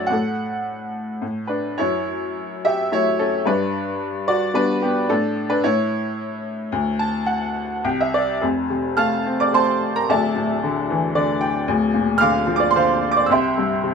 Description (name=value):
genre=classical, lyrical solo piano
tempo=101-116 BPM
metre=3/4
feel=rubato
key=D major, F major from 8.4 s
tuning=A4 = 438 Hz
part: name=bright upright piano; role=solo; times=0.0-13.9 s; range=D1 to F6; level=-18 LUFS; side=equal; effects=none
room=light reverb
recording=minimal, uncompressed stereo recording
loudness=-18 LUFS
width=side -6 dB against mid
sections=0.0-8.4 A section; 8.4-13.9 B section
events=upright piano fill 6.7-8.4, 10.9-11.7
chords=0.1 N.C.; 1.2 Asus2; 1.8 F#m7; 3.5 G; 5.1 D5/A; 5.6 A; 6.7 D; 7.8 N.C.; 8.4 F; 10.1 Dsus2; 11.7 Bb/D; 13.3 C